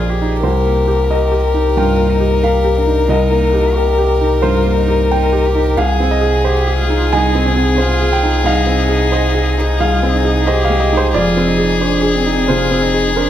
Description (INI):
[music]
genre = neoclassical piano and strings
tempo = 90 BPM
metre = 4/4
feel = rubato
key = C minor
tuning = A4 = 440 Hz
[part]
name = rich violin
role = melody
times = 0.0-13.3 s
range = Ab4 to Bb4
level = -17 LUFS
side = left 6 dB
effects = none
[part]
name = warm cello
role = second line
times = 0.0-13.3 s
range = C4 to Ab4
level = -21 LUFS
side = right 4 dB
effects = none
[part]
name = felt-muted upright piano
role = accompaniment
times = 0.0-13.3 s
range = C2 to Ab5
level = -17 LUFS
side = right 3 dB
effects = none
[part]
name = sub bass with octave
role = bass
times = 0.0-13.3 s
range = F1 to C2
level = -17 LUFS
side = equal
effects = none
[sound]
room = light reverb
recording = none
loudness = -12 LUFS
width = side -11 dB against mid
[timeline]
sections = 0.0-13.3 A section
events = none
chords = 0.4 Cm7; 5.8 Ab/C; 11.1 Fm7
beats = | 0.44 1.11 1.77 2.44 | 3.10 3.76 4.43 5.11 | 5.77 6.44 7.12 7.79 | 8.46 9.13 9.80 10.47 | 11.14 11.81 12.48 13.16